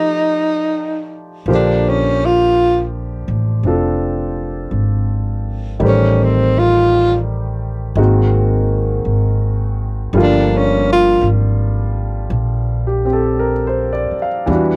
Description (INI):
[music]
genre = jazz ballad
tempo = 55 BPM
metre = 4/4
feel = swing 67% on 8ths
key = Bb major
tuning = A4 = 440 Hz
[part]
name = breathy tenor saxophone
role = melody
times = 0.0-11.3 s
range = C4 to F4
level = -17 LUFS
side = equal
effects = cassette tape
[part]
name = warm grand piano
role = accompaniment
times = 0.0-14.8 s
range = D3 to F5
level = -21 LUFS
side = equal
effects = cassette tape
[part]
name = upright bass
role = bass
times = 1.5-14.8 s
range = F1 to E2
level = -20 LUFS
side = equal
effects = none
[sound]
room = moderate booth ambience, RT60 0.2 s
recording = home recording on cassette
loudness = -16 LUFS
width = mono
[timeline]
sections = 0.0-1.5 A section; 1.5-14.8 B section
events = break 0.0-1.5; tenor saxophone solo 1.5-14.8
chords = 0.0 F13; 1.5 Bb69; 5.8 Am7b5; 8.0 Ab9; 10.1 Gm7